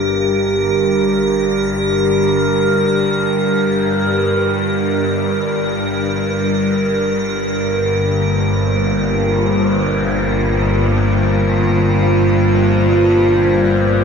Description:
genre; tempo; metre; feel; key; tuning
dark ambient drone; free time; none; none; G minor; A4 = 440 Hz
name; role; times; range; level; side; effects
dark analog pad; sustained chords; 0.0-14.0 s; G2 to C5; -16 LUFS; equal; wide subtle chorus
bowed-like drone; drone; 0.0-14.0 s; G1 to G2; -18 LUFS; left 1 dB; built-in reverb, phaser
icy glass pad; texture; 0.0-14.0 s; Bb4; -20 LUFS; right 2 dB; chorus, built-in reverb
room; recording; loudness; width
wet huge ambient reverb, RT60 7.6 s; none; -13 LUFS; side -6 dB against mid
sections
0.0-14.0 A section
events
fade-in on synth drone 0.0-14.0; fade-out on ambient pad 0.0-14.0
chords
0.0 Gm; 7.2 Bb5/G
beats
free time

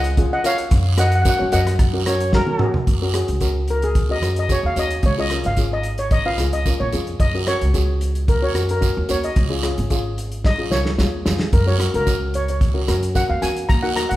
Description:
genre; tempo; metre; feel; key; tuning
calypso; 111 BPM; 4/4; straight; F# major; A4 = 440 Hz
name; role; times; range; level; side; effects
steel pan; melody; 0.0-14.2 s; G#4 to A#5; -23 LUFS; left 1 dB; none
steel pan; accompaniment; 0.0-14.1 s; C#4 to C#5; -25 LUFS; left 2 dB; none
upright bass; bass; 0.0-14.2 s; G#1 to F#2; -22 LUFS; equal; none
warm soul drum kit; drums; 0.0-14.2 s; hi-hat, kick drum, rim click, snare drum, toms; -21 LUFS; equal; none
guiro; percussion; 0.5-14.1 s; none; -32 LUFS; right 6 dB; none
breathy trumpet; second line; 2.1-2.8 s; A#4 to C#5; -24 LUFS; right 1 dB; none
room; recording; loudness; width
light reverb; none; -17 LUFS; side -15 dB against mid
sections
0.0-2.9 A section; 2.9-14.2 B section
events
drum fill 2.3-2.9, 10.4-11.5; steel pan solo 2.9-14.2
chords
0.0 C#; 0.7 F#; 5.0 C#; 7.2 F#add9; 9.4 C#; 11.5 F#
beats
0.18 | 0.72 1.26 1.80 2.33 | 2.88 3.42 3.96 4.50 | 5.04 5.58 6.12 6.66 | 7.20 7.74 8.28 8.82 | 9.37 9.91 10.45 10.99 | 11.53 12.07 12.61 13.15 | 13.69

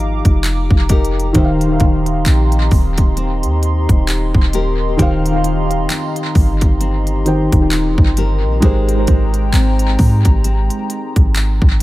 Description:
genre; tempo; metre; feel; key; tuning
contemporary R&B; 66 BPM; 4/4; swing 58% on 16ths; Eb major; A4 = 440 Hz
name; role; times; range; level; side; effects
felt-muted upright piano; accompaniment; 0.0-11.8 s; Eb3 to G5; -20 LUFS; equal; tape echo
hollow soft pad; sustained chords; 0.0-11.8 s; Ab3 to D6; -26 LUFS; equal; chorus, sidechain pumping
nylon-string guitar; arpeggios; 0.0-11.8 s; Eb3 to Bb4; -24 LUFS; left 5 dB; tape echo
clean 808-style bass; bass; 0.0-11.8 s; Eb1 to Ab2; -15 LUFS; equal; none
trap drum kit; drums; 0.2-11.8 s; handclaps, hi-hat, kick drum; -15 LUFS; equal; tape echo
soft synth bell; texture; 5.0-10.0 s; C5 to G5; -33 LUFS; right 2 dB; none
room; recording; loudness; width
little or no reverb; echo-heavy mix; -12 LUFS; side -17 dB against mid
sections
0.0-11.8 A section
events
none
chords
0.0 F9sus4; 1.4 Eb6; 8.6 Abmaj9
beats
0.44 | 1.35 2.26 3.17 4.08 | 4.99 5.90 6.81 7.72 | 8.62 9.53 10.44 11.35

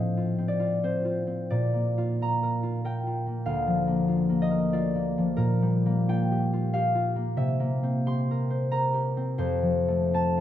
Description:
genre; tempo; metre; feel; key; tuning
classical, solo harp piece; 91 BPM; 3/4; uneven beats, rubato; Bb major; A4 = 440 Hz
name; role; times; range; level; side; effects
concert harp; solo; 0.0-10.4 s; D2 to C6; -24 LUFS; left 1 dB; none
room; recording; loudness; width
light reverb; close, detailed microphones; -24 LUFS; side -11 dB against mid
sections
0.0-10.4 A section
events
none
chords
0.0 F7/A; 1.5 Bb; 3.5 Bb/D; 5.4 Gm7/Bb; 7.4 C7; 9.4 F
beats
0.17 0.83 | 1.51 2.21 2.84 | 3.47 4.10 4.74 | 5.39 6.10 6.74 | 7.37 8.07 8.73 | 9.39 10.13

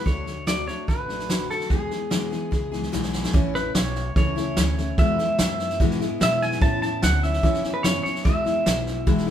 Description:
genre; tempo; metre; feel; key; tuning
honky-tonk and classic country; 147 BPM; 4/4; straight; A major; A4 = 440 Hz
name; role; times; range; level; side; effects
pedal steel guitar; melody; 0.0-9.3 s; G#4 to A5; -26 LUFS; equal; none
picked steel-string acoustic guitar; accompaniment; 0.0-9.3 s; E2 to G#4; -27 LUFS; left 3 dB; none
upright bass; bass; 0.1-9.3 s; E1 to B2; -29 LUFS; equal; none
vintage drum kit; drums; 0.1-9.3 s; hi-hat, kick drum, snare drum; -24 LUFS; right 1 dB; none
room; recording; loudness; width
moderate studio reverb, RT60 0.8 s; band playing live in one room; -20 LUFS; side -10 dB against mid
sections
0.0-3.3 A section; 3.3-9.3 B section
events
drum fill 2.9-3.3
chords
0.1 D; 1.7 E; 3.3 A; 5.0 E; 6.6 Aadd9; 8.3 E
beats
| 0.06 0.47 0.88 1.29 | 1.70 2.11 2.52 2.93 | 3.34 3.75 4.16 4.57 | 4.98 5.39 5.80 6.21 | 6.62 7.03 7.43 7.84 | 8.25 8.66 9.07

